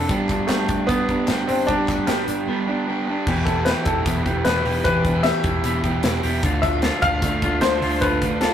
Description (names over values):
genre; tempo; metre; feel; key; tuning
jangly indie pop; 151 BPM; 4/4; straight; unclear; A4 = 441 Hz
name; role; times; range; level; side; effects
overdriven semi-hollow guitar; accompaniment; 0.0-8.5 s; D3 to G4; -25 LUFS; right 3 dB; none
clean electric guitar; arpeggios; 0.0-8.5 s; D3 to A4; -26 LUFS; left 1 dB; none
vintage muted picked electric bass; bass; 0.0-8.5 s; E1 to D2; -27 LUFS; equal; none
modern studio drum kit; drums; 0.1-8.5 s; crash cymbal, hi-hat, kick drum, snare drum; -25 LUFS; equal; none
group handclap; percussion; 0.3-2.2 s; none; -35 LUFS; left 2 dB; none
bright upright piano; melody; 0.5-8.5 s; G3 to F5; -23 LUFS; left 2 dB; none
room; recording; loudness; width
wet studio reverb, RT60 0.6 s; rough rehearsal-room recording, tube saturation; -18 LUFS; side -9 dB against mid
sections
0.0-3.3 A section; 3.3-8.5 B section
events
break 2.5-3.3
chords
0.1 G; 3.3 Em; 6.4 Dm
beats
| 0.10 0.49 0.89 1.28 | 1.68 2.08 2.47 2.87 | 3.27 3.66 4.06 4.45 | 4.85 5.25 5.64 6.04 | 6.43 6.83 7.23 7.62 | 8.02 8.42